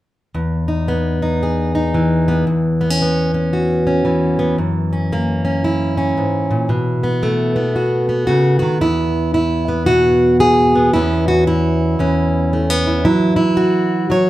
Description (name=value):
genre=folk, solo fingerstyle acoustic guitar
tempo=113 BPM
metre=4/4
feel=swing 63% on 8ths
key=E major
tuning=A4 = 436 Hz
part: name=fingerpicked plugged-in steel-string acoustic guitar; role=solo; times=0.3-14.3 s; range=E2 to C#5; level=-14 LUFS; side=equal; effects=none
room=wet large studio reverb, RT60 1.1 s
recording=band playing live in one room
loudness=-14 LUFS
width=side -15 dB against mid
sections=0.3-8.8 A section; 8.8-14.3 B section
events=none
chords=0.3 Emaj7; 2.5 C#m7/E; 4.6 F#7; 6.7 B7sus4; 8.8 E; 10.9 C#m7/E; 13.0 F#7(no3)